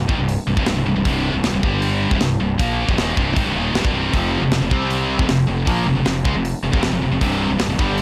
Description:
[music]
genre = heavy metal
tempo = 156 BPM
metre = 4/4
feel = straight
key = C minor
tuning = A4 = 441 Hz
[part]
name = scooped high-gain guitar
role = riff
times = 0.0-8.0 s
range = C2 to C4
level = -24 LUFS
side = equal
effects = distortion
[part]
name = scooped high-gain guitar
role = riff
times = 0.0-8.0 s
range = C2 to C4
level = -27 LUFS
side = equal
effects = distortion
[part]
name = fuzz fingered electric bass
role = bass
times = 0.0-8.0 s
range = C1 to Db2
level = -26 LUFS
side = equal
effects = overdrive
[part]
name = tight metal drum kit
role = drums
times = 0.1-8.0 s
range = hi-hat, kick drum, snare drum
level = -24 LUFS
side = equal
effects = none
[part]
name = cranked stack guitar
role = riff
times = 4.1-8.0 s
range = C2 to C4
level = -27 LUFS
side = equal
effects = overdrive
[sound]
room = light reverb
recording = blown-out, overdriven recording, overdrive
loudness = -19 LUFS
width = mono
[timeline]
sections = 0.0-8.0 A section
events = none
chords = 0.0 C5; 1.6 G5; 2.1 Cm; 4.1 F5; 4.7 C5; 5.2 F5; 7.2 C5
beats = 0.28 0.66 | 1.05 1.43 1.82 2.20 | 2.59 2.97 3.36 3.74 | 4.13 4.51 4.90 5.28 | 5.67 6.05 6.44 6.82 | 7.21 7.59 7.98

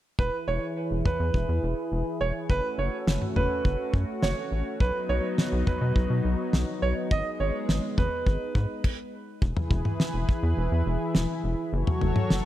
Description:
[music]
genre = synth-pop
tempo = 104 BPM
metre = 4/4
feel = straight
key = E major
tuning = A4 = 441 Hz
[part]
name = clear concert grand piano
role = second line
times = 0.2-8.5 s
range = B4 to D#5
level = -31 LUFS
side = right 4 dB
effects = analog delay
[part]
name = lush unison pad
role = sustained chords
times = 0.2-12.5 s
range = E3 to C#5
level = -31 LUFS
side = left 1 dB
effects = chorus, low-pass filter
[part]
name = rubbery square bass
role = bass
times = 0.2-12.4 s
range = E1 to B2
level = -27 LUFS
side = equal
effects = none
[part]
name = damped 70s drum kit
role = drums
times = 0.2-12.4 s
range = crash cymbal, kick drum, snare drum, toms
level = -26 LUFS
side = equal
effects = none
[sound]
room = light reverb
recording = none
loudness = -24 LUFS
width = side -13 dB against mid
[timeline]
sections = 0.2-9.4 A section; 9.4-12.5 B section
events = filter sweep on analog synth pad 0.2-9.4; stop 8.8-9.4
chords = 0.2 E; 2.5 F#m; 4.8 B; 7.1 G#m; 9.4 E; 11.7 F#m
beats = | 0.19 0.77 1.34 1.92 | 2.50 3.07 3.65 4.23 | 4.80 5.38 5.96 6.54 | 7.11 7.69 8.27 8.84 | 9.42 10.00 10.57 11.15 | 11.73 12.30

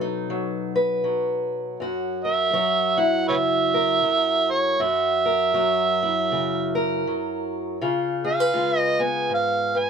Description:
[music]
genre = acoustic country blues, solo or duo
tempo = 80 BPM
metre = 4/4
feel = swing 60% on 8ths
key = F# mixolydian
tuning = A4 = 438 Hz
[part]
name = fingerpicked steel-string acoustic guitar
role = accompaniment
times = 0.0-9.9 s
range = F#2 to B4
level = -24 LUFS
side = left 1 dB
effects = none
[part]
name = overdriven harmonica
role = melody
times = 2.2-9.9 s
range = B4 to G#5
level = -21 LUFS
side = right 3 dB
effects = none
[sound]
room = moderate booth ambience, RT60 0.2 s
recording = none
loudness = -20 LUFS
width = side -6 dB against mid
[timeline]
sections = 0.0-9.9 A section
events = none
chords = 0.0 B7; 1.8 F#7; 7.8 C#7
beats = 0.29 1.04 | 1.79 2.54 3.29 4.04 | 4.79 5.54 6.29 7.04 | 7.79 8.54 9.29

